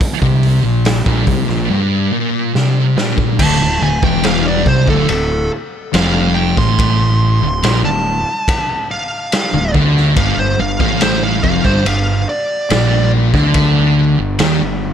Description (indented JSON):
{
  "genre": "stoner and doom metal",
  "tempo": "71 BPM",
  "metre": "4/4",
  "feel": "straight",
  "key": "D minor from 3.4 s",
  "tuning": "A4 = 440 Hz",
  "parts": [
    { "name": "raw garage drum kit", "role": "drums", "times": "0.0-14.6 s", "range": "crash cymbal, hi-hat, kick drum, ride cymbal, snare drum", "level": "-18 LUFS", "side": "equal", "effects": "none" },
    { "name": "thick fuzz guitar", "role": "riff", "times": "0.2-14.9 s", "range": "D2 to Eb3", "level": "-17 LUFS", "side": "left 8 dB", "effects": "distortion" },
    { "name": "thick fuzz guitar", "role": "riff", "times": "0.2-14.9 s", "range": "D2 to Eb3", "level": "-17 LUFS", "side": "right 8 dB", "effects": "distortion" },
    { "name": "fuzz fingered electric bass", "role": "bass", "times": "0.2-14.9 s", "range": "D1 to Eb2", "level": "-20 LUFS", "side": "equal", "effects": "overdrive" },
    { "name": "fuzz lead guitar", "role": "melody", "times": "3.4-13.1 s", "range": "A4 to C6", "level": "-19 LUFS", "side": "equal", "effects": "distortion, ping-pong delay" }
  ],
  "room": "studio reverb",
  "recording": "dark, warm production",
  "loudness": "-12 LUFS",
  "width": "side -9 dB against mid",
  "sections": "0.0-3.4 A section; 3.4-14.9 B section",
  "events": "drum fill 2.5-3.4; lead electric guitar solo 3.4-14.9",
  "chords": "0.0 Bb5; 3.4 Dm; 10.2 G5"
}